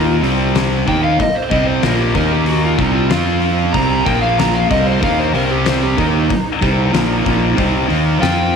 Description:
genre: blues rock power trio and southern rock.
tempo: 94 BPM.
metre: 4/4.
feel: straight.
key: C minor.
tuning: A4 = 440 Hz.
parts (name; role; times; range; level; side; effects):
overdriven slide guitar; melody; 0.0-8.6 s; Eb4 to Bb5; -20 LUFS; equal; slapback echo.
thick fuzz guitar; riff; 0.0-8.6 s; Bb2 to F4; -16 LUFS; equal; distortion.
fuzz fingered electric bass; bass; 0.0-8.6 s; Bb1 to F2; -19 LUFS; right 1 dB; overdrive.
oversized low-tuned drum kit; drums; 0.2-8.4 s; hi-hat, kick drum, snare drum; -21 LUFS; left 4 dB; none.
room: moderate echo chamber reverb, RT60 2.1 s.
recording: 1960s-style stereo.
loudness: -13 LUFS.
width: side -6 dB against mid.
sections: 0.0-8.6 A section.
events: electric slide guitar solo 0.0-8.6.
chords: 0.0 Cm; 2.1 Eb5; 2.8 Cm; 3.1 F5; 3.7 C5; 4.1 Bb5; 4.7 Cm.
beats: 0.55 | 1.19 1.83 2.47 3.11 | 3.74 4.38 5.02 5.66 | 6.30 6.93 7.57 8.21.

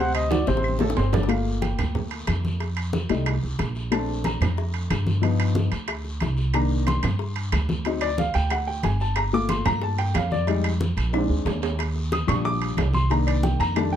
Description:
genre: Afro-Cuban jazz.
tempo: 183 BPM.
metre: 4/4.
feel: straight.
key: G minor.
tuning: A4 = 440 Hz.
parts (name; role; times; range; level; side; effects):
breathy trumpet; melody; 0.0-0.8 s; C5 to F#5; -26 LUFS; right 1 dB; none.
warm baby grand piano; accompaniment; 0.0-14.0 s; C3 to Eb6; -26 LUFS; left 3 dB; none.
upright bass; bass; 0.0-14.0 s; G1 to G2; -24 LUFS; right 1 dB; none.
claves; percussion; 0.1-13.9 s; none; -36 LUFS; left 4 dB; none.
timbales; percussion; 0.1-13.9 s; none; -32 LUFS; right 10 dB; none.
congas; percussion; 0.2-14.0 s; none; -28 LUFS; right 1 dB; none.
bongos; percussion; 0.3-14.0 s; none; -35 LUFS; left 7 dB; none.
guiro; percussion; 0.3-14.0 s; none; -40 LUFS; left 1 dB; none.
room: light reverb.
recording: dark, warm production.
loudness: -21 LUFS.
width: side -10 dB against mid.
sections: 0.0-1.3 A section; 1.3-11.8 A section; 11.8-14.0 A section.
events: trumpet solo 0.0-1.3; drum fill 0.3-1.3, 11.1-11.8; grand piano solo 1.3-14.0.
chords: 0.0 D7; 1.3 Gm9; 2.6 F9; 3.9 Bbmaj9; 5.2 G7b13; 6.5 Cm9; 7.9 D7b9; 9.2 Gm9; 10.5 Fm7; 11.1 Bb7; 11.8 Ebmaj9; 13.1 Cm7.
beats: 0.31 0.64 0.97 | 1.30 1.62 1.95 2.28 | 2.61 2.94 3.27 3.59 | 3.92 4.25 4.58 4.90 | 5.23 5.56 5.89 6.21 | 6.54 6.87 7.20 7.53 | 7.86 8.18 8.51 8.84 | 9.17 9.50 9.82 10.15 | 10.48 10.81 11.14 11.46 | 11.79 12.12 12.45 12.78 | 13.11 13.44 13.76.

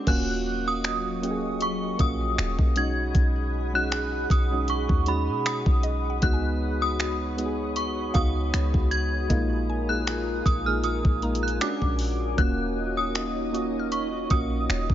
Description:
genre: contemporary R&B.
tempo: 78 BPM.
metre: 4/4.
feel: swing 54% on 16ths.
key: Eb minor.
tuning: A4 = 441 Hz.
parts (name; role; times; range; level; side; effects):
synth chime; melody; 0.0-14.9 s; B5 to G#6; -30 LUFS; right 1 dB; ensemble chorus, phaser, tape echo.
soft electric-piano-like synth keys; accompaniment; 0.0-14.9 s; G#3 to Ab4; -30 LUFS; right 1 dB; chorus.
glassy FM pad; sustained chords; 0.4-14.9 s; Gb3 to Eb6; -34 LUFS; left 1 dB; ensemble chorus, built-in reverb, sidechain pumping.
clean 808-style bass; bass; 0.1-14.9 s; Eb1 to B2; -29 LUFS; equal; none.
smooth R&B drum kit; drums; 0.1-14.9 s; crash cymbal, finger snaps, hi-hat, kick drum; -25 LUFS; equal; none.
mallet-like synth pluck; texture; 0.1-0.9, 5.8-14.6 s; D#5 to F6; -40 LUFS; equal; chorus, phaser, tape echo.
room: little or no reverb.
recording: nothing above 7.5 kHz.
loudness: -23 LUFS.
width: side -11 dB against mid.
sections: 0.1-14.9 A section.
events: none.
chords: 0.1 Ebm9; 2.8 B6; 6.2 Db9sus4; 9.3 Bb7sus4; 11.6 Bb7alt; 12.4 Ebm9.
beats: | 0.07 0.84 1.61 2.38 | 3.15 3.92 4.69 5.46 | 6.23 7.00 7.76 8.53 | 9.30 10.07 10.84 11.61 | 12.38 13.15 13.92 14.69.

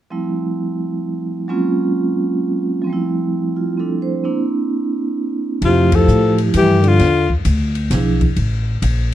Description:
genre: jazz, small-group swing and bop.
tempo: 130 BPM.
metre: 3/4.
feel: swing 66% on 8ths.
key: F major.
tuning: A4 = 439 Hz.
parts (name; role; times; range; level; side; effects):
vibraphone with medium hard mallets; accompaniment; 0.1-8.2 s; F3 to C5; -18 LUFS; right 3 dB; none.
clear alto saxophone; melody; 5.6-7.3 s; F4 to A4; -16 LUFS; left 5 dB; none.
breathy trombone; second line; 5.6-7.3 s; C3 to F3; -19 LUFS; right 1 dB; none.
upright bass; bass; 5.6-9.1 s; A1 to A2; -16 LUFS; left 1 dB; none.
open jazz drum kit; drums; 5.6-9.0 s; hi-hat, kick drum, ride cymbal, snare drum; -24 LUFS; left 1 dB; none.
room: small room ambience.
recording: dry, close 1970s-style studio recording.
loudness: -15 LUFS.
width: side -12 dB against mid.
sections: 0.1-5.6 A section; 5.6-9.1 B section.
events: band accent 5.9.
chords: 0.1 Fmaj7; 1.5 Gbmaj9#11; 2.9 Fmaj7; 4.2 C7; 5.6 Fmaj9; 7.0 E7b9; 8.4 N.C..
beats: | 0.10 0.56 1.02 | 1.48 1.94 2.40 | 2.86 3.32 3.78 | 4.24 4.70 5.16 | 5.62 6.08 6.54 | 7.00 7.46 7.92 | 8.38 8.84.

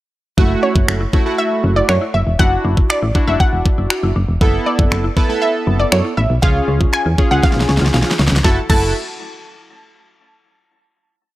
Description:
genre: dance-pop.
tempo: 119 BPM.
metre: 4/4.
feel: straight.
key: F# minor.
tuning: A4 = 439 Hz.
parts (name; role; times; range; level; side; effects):
chorused retro synth keys; accompaniment; 0.4-8.9 s; A3 to A4; -20 LUFS; right 1 dB; sidechain pumping.
mallet-like synth pluck; arpeggios; 0.4-8.9 s; E3 to E#5; -29 LUFS; left 3 dB; chorus, sidechain pumping, analog delay.
solid FM bass; bass; 0.4-8.9 s; E1 to F#2; -17 LUFS; equal; sidechain pumping.
pop drum kit; drums; 0.4-8.8 s; crash cymbal, finger snaps, kick drum, snare drum; -16 LUFS; equal; none.
analog pluck; melody; 0.6-8.9 s; C#5 to A5; -20 LUFS; equal; chorus.
room: light reverb, digital ambience.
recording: dry, gritty hardware recording, transformer saturation.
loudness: -13 LUFS.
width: side -16 dB against mid.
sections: 0.4-8.4 verse; 8.4-10.5 final chord.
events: drum fill 7.4-8.4.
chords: 0.4 F#m7; 2.4 Dadd9/F#; 4.4 Asus2/F#; 6.4 C#; 8.4 F#m7.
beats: | 0.38 0.88 1.39 1.89 | 2.40 2.90 3.40 3.91 | 4.41 4.92 5.42 5.92 | 6.43 6.93 7.44 7.94 | 8.45.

